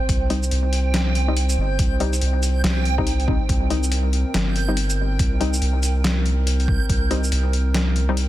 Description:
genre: deep dubstep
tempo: 141 BPM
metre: 4/4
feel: swing 61% on 16ths, half-time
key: C minor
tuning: A4 = 441 Hz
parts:
  - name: dark analog pad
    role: sustained chords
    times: 0.0-8.3 s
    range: C4 to C5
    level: -30 LUFS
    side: right 1 dB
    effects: chorus
  - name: backwards swelling texture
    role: texture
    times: 0.0-8.3 s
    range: G5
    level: -32 LUFS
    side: right 6 dB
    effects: built-in reverb
  - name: soft dub sub bass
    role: bass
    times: 0.1-8.3 s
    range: G1 to C2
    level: -20 LUFS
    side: equal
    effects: none
  - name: electronic kick drum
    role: drums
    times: 0.1-7.0 s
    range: none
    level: -22 LUFS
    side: equal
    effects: none
  - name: trip hop sampler-style drum kit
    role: drums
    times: 0.1-8.3 s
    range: hi-hat, shaker, snare drum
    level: -26 LUFS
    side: left 2 dB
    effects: none
  - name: filtered dub chord stab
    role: stabs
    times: 0.3-8.2 s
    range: G3 to Eb4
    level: -29 LUFS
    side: left 4 dB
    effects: chorus, dub echo
room: little or no reverb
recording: dense, heavily limited modern master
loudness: -18 LUFS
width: side -14 dB against mid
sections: 0.0-8.3 A section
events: none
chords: 0.0 Cm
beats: | 0.09 0.51 0.94 1.36 | 1.79 2.22 2.64 3.07 | 3.49 3.92 4.34 4.77 | 5.19 5.62 6.05 6.47 | 6.90 7.32 7.75 8.17

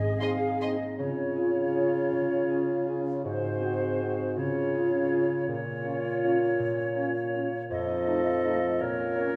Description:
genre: classical, orchestral ballroom waltz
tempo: 161 BPM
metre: 3/4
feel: uneven beats, rubato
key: Db major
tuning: A4 = 441 Hz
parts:
  - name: bright small flute group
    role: second line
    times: 0.0-9.4 s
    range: C5 to F5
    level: -36 LUFS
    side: equal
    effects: none
  - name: muted chamber viola section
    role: accompaniment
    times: 0.0-0.8 s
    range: Ab4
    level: -35 LUFS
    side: equal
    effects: none
  - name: concert harp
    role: arpeggios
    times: 0.0-9.4 s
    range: F2 to Gb5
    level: -37 LUFS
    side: equal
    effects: none
  - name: muted chamber violin section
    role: melody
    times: 0.2-0.7 s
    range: C6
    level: -46 LUFS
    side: equal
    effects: none
  - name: muted studio violin section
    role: second line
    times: 0.2-0.7 s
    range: Eb5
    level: -42 LUFS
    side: equal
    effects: none
  - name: mellow French horn section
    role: sustained chords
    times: 0.2-9.3 s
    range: A3 to Gb4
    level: -35 LUFS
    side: equal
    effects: none
  - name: mellow clarinet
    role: second line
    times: 1.0-9.4 s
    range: F4 to Bb4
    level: -34 LUFS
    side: equal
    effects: none
  - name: mellow bassoon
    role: accompaniment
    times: 1.0-9.4 s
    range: Ab2 to F3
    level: -33 LUFS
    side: equal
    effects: none
room: wet recital hall reverb, RT60 1.7 s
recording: none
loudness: -28 LUFS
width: mono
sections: 1.0-9.4 A section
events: none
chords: 0.0 Ab; 1.0 Db; 3.2 Ab7; 4.4 Db; 5.5 Bbm; 7.7 F7; 8.8 Bbm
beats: 0.21 0.61 | 0.99 1.36 1.75 | 2.12 2.49 2.88 | 3.25 3.62 4.01 | 4.37 4.74 5.13 | 5.49 5.86 6.24 | 6.60 6.96 7.35 | 7.70 8.07 8.45 | 8.81 9.17

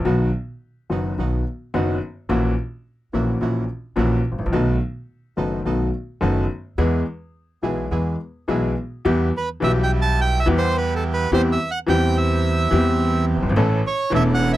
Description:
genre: tango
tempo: 107 BPM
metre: 4/4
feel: rubato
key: E major, E minor from 9.1 s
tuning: A4 = 436 Hz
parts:
  - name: bright upright piano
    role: accompaniment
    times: 0.0-14.6 s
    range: E1 to A4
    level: -22 LUFS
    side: left 3 dB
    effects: none
  - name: upright bass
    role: bass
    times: 0.0-14.6 s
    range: E1 to E2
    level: -22 LUFS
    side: right 1 dB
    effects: none
  - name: bandoneon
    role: stabs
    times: 0.1-14.6 s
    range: A#3 to A4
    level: -30 LUFS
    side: right 8 dB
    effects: none
  - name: bandoneon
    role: melody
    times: 9.4-14.6 s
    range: A4 to A5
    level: -23 LUFS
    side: right 4 dB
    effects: none
room: little or no reverb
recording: dry, close 1970s-style studio recording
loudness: -19 LUFS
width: side -14 dB against mid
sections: 0.0-9.1 A section; 9.1-14.6 B section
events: none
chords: 0.0 B; 2.3 F#7/A#; 4.5 B7; 6.8 E; 9.1 Em; 11.3 C/E; 13.6 A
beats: | 0.05 0.62 1.18 1.74 | 2.29 2.85 3.41 3.97 | 4.53 5.09 5.65 6.21 | 6.78 7.34 7.91 8.48 | 9.05 9.62 10.19 10.75 | 11.32 11.88 12.44 13.00 | 13.57 14.13

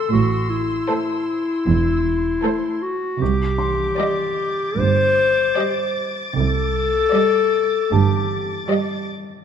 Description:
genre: cinematic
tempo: 77 BPM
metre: 4/4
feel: straight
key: unclear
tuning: A4 = 440 Hz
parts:
  - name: mellow clarinet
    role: second line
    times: 0.0-8.7 s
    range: E4 to C5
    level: -20 LUFS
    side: left 4 dB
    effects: none
  - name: dark baby grand piano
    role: texture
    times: 0.0-9.4 s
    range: A4 to C6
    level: -33 LUFS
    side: left 2 dB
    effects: none
  - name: muted studio violin section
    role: texture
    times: 0.0-9.1 s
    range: C6 to A6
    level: -31 LUFS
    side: left 3 dB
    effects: none
  - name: muted studio cello section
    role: bass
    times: 0.1-8.5 s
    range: E2 to C3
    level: -22 LUFS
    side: right 5 dB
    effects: none
  - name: muted studio double bass section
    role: bass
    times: 0.1-8.6 s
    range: E1 to C2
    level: -23 LUFS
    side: right 5 dB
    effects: none
  - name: muted studio violin section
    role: melody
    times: 0.9-9.3 s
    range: C5 to Eb5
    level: -31 LUFS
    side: left 2 dB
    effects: none
  - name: muted studio violin section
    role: second line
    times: 0.9-9.3 s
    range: A4 to D5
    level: -30 LUFS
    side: left 1 dB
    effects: none
  - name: muted studio viola section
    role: accompaniment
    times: 0.9-9.3 s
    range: G3 to A3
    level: -26 LUFS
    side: right 4 dB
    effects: none
room: moderate scoring stage reverb, RT60 1.9 s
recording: nothing above 10.5 kHz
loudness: -17 LUFS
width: side -8 dB against mid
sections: 0.0-9.4 A section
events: none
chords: 0.0 Am; 3.2 Cmadd9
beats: | 0.11 0.89 1.66 2.44 | 3.21 3.99 4.79 5.57 | 6.36 7.14 7.92 8.71

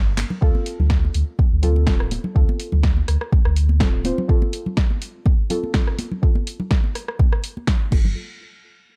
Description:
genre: deep house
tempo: 124 BPM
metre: 4/4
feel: swing 54% on 16ths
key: unclear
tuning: A4 = 439 Hz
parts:
  - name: warm sub bass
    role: bass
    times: 0.0-4.1, 7.9-8.1 s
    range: D1 to D2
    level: -21 LUFS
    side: equal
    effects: sidechain pumping
  - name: deep house drum kit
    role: drums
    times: 0.2-8.0 s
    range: crash cymbal, handclaps, hi-hat, ride cymbal, rim click, snare drum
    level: -30 LUFS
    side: equal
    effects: overdrive
  - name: congas and bongos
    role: percussion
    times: 0.2-8.1 s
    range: none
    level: -32 LUFS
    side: equal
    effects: sidechain pumping on perc
  - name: deep mellow chord stab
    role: stabs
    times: 0.4-8.1 s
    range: Bb3 to C5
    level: -31 LUFS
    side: equal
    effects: chorus, cassette tape, sidechain pumping, tape echo
  - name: electronic kick drum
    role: drums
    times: 0.4-8.0 s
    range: none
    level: -20 LUFS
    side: equal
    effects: overdrive
room: digital ambience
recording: none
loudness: -20 LUFS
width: mono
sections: 0.4-8.2 A section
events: drum fill 0.2; filter sweep on synth stab 0.4-8.2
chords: 0.4 Dm7; 7.9 Gm9; 8.2 N.C.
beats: | 0.42 0.91 1.39 1.87 | 2.36 2.84 3.32 3.81 | 4.29 4.78 5.26 5.74 | 6.23 6.71 7.20 7.68

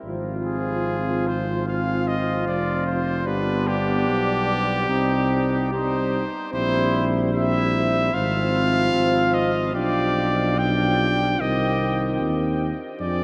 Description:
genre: classical, brass quintet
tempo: 74 BPM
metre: 4/4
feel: rubato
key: C minor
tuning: A4 = 441 Hz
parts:
  - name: clear flugelhorn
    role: second line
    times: 0.0-13.2 s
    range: D4 to Ab4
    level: -31 LUFS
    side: equal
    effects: none
  - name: warm French horn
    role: accompaniment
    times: 0.0-13.2 s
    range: B3 to D4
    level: -30 LUFS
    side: equal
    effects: none
  - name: warm euphonium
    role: accompaniment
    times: 0.0-13.2 s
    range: Eb3 to G3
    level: -31 LUFS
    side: equal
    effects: none
  - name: dark tuba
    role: bass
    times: 0.0-13.2 s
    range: F1 to F2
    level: -28 LUFS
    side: equal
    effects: none
  - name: clear trumpet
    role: melody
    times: 0.5-13.2 s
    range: G4 to G5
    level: -28 LUFS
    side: equal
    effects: none
room: wet huge ambient reverb, RT60 9.3 s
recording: in a vast, echoing space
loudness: -22 LUFS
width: mono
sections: 0.0-13.2 A section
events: none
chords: 0.0 Fm/Ab; 3.3 G; 4.9 Cm; 6.5 C7/Bb; 8.1 Fm/Ab; 9.7 G7/B; 11.4 Cm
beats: | 0.04 0.86 1.67 2.47 | 3.27 4.08 4.89 5.73 | 6.54 7.34 8.14 8.94 | 9.75 10.59 11.40 12.21 | 13.01

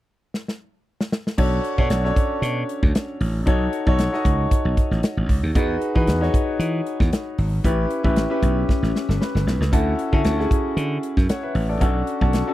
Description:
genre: polished 1980s jazz-funk pop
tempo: 115 BPM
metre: 4/4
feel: swing 54% on 16ths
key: unclear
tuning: A4 = 440 Hz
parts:
  - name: modern studio drum kit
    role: drums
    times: 0.3-12.5 s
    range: crash cymbal, hi-hat, kick drum, snare drum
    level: -21 LUFS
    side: equal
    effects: none
  - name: clear concert grand piano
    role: accompaniment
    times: 1.4-12.5 s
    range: C#4 to F#5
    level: -24 LUFS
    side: left 1 dB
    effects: wide subtle chorus
  - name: slap bass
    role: bass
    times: 1.4-12.4 s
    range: G1 to E3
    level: -22 LUFS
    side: equal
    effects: none
room: little or no reverb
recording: dry, close 1970s-style studio recording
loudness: -18 LUFS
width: side -15 dB against mid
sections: 0.0-1.4 A section; 1.4-12.5 B section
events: drum fill 0.3-1.4, 8.7-9.7; grand piano fill 8.9-9.7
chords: 0.0 N.C.; 1.4 Bm7; 3.5 B7; 5.6 Emaj7; 7.6 A7; 9.7 Dmaj7; 11.8 Bm7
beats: 0.34 0.86 | 1.38 1.90 2.42 2.95 | 3.47 3.99 4.51 5.03 | 5.55 6.08 6.60 7.12 | 7.64 8.16 8.68 9.21 | 9.73 10.25 10.77 11.29 | 11.81 12.33

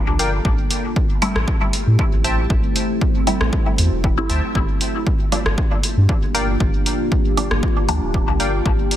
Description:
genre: dub techno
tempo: 117 BPM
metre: 4/4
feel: swing 54% on 16ths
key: G dorian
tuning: A4 = 439 Hz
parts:
  - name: deep dark ambient pad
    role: sustained chords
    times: 0.0-9.0 s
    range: A3 to A4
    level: -25 LUFS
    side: equal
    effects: chorus, built-in reverb, sidechain pumping
  - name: pure sine sub bass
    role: bass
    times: 0.1-8.8 s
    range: D1 to A2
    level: -19 LUFS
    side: equal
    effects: sidechain pumping
  - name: wavetable chord stab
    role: riff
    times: 0.2-8.5 s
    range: Bb4 to A5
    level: -27 LUFS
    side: left 2 dB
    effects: sidechain pumping, dub echo
  - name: punchy analog drum machine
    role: drums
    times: 0.2-9.0 s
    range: hi-hat, rim click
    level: -26 LUFS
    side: equal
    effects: soft clipping on snare, dub echo
  - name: electronic kick drum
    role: drums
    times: 0.5-8.8 s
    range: none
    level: -20 LUFS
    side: equal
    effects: none
  - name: filtered dub chord stab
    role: stabs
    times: 1.2-8.1 s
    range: F3 to E4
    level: -25 LUFS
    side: left 1 dB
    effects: phaser, sidechain pumping, dub echo
room: light reverb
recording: dense, heavily limited modern master, vinyl crackle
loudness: -16 LUFS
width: side -12 dB against mid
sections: 0.0-9.0 A section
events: filter sweep on synth stab 0.0-9.0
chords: 0.5 Am7; 4.6 Gm7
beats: | 0.45 0.96 1.48 1.99 | 2.50 3.01 3.53 4.04 | 4.55 5.07 5.58 6.09 | 6.60 7.12 7.63 8.14 | 8.65

